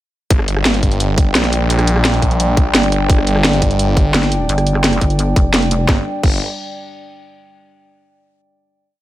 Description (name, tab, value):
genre	dark technical drum and bass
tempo	172 BPM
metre	4/4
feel	straight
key	G minor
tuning	A4 = 440 Hz
part	dark analog pad	sustained chords	0.3-6.0 s	G3 to G5	-22 LUFS	equal	chorus, sidechain pumping
part	snarling distorted saw bass	bass	0.3-6.4 s	G1 to Bb1	-16 LUFS	equal	distortion, tube saturation, sidechain pumping
part	drum and bass drum kit	drums	0.3-6.3 s	crash cymbal, hi-hat, rim click, snare drum	-17 LUFS	equal	none
part	electronic kick drum	drums	0.3-6.3 s	none	-14 LUFS	equal	none
part	pulsing pluck wobble bass	bass	4.1-5.9 s	F1 to G1	-16 LUFS	equal	chorus
room	digital ambience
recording	none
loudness	-12 LUFS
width	side -15 dB against mid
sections	0.3-5.9 drop; 5.9-7.3 final chord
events	drop 0.3-5.9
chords	0.3 G5